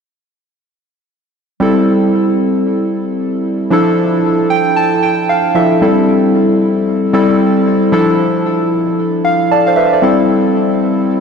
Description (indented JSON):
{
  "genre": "R&B",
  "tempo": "114 BPM",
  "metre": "4/4",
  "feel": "swing 61% on 16ths",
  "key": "A minor",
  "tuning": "A4 = 439 Hz",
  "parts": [
    { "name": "warm analog keys", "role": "solo", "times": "1.6-11.2 s", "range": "F3 to A5", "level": "-10 LUFS", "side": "equal", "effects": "chorus, ping-pong delay" }
  ],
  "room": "wet plate reverb, RT60 3.8 s",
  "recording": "dreamy mix soaked in reverb",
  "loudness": "-10 LUFS",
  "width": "side -6 dB against mid",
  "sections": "1.6-5.8 A section; 5.8-11.2 B section",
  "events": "synth keys fill 4.2-5.8, 9.0-10.0",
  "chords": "1.6 Am7; 3.7 Dmadd9; 5.8 Am7; 7.9 Dmadd9; 10.0 Am7",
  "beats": "| 1.60 2.13 2.66 3.18 | 3.71 4.24 4.76 5.29 | 5.82 6.34 6.87 7.39 | 7.92 8.45 8.97 9.50 | 10.03 10.55 11.08"
}